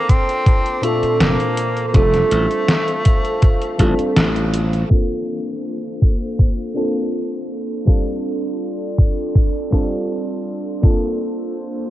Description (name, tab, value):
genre	vaporwave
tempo	81 BPM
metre	4/4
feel	straight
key	unclear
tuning	A4 = 440 Hz
part	clear tenor saxophone	melody	0.0-4.2 s	A3 to C4	-22 LUFS	equal	tape echo
part	mellow FM electric piano	accompaniment	0.0-11.9 s	Bb2 to A4	-22 LUFS	equal	lush chorus, analog delay
part	warbly tape-like pad	sustained chords	0.0-11.9 s	Bb3 to D6	-28 LUFS	right 2 dB	chorus, built-in reverb
part	detuned 8-bit digital drum machine	drums	0.1-4.9 s	hi-hat, snare drum	-22 LUFS	equal	vintage 12-bit sampler grit, gated reverb
part	electronic kick drum	drums	0.1-11.0 s	none	-14 LUFS	equal	vintage 12-bit sampler grit
part	glassy slap bass	bass	1.0-4.8 s	F1 to A1	-18 LUFS	equal	none
room	light reverb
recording	cassette tape, low-pass filter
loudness	-16 LUFS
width	side -14 dB against mid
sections	0.0-4.9 A section; 4.9-11.9 B section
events	band accent 4.2-4.5; filter sweep 4.9-11.9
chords	0.0 Bbmaj9; 1.9 F6; 4.9 Bbmaj9; 7.9 F6; 10.8 Bbmaj9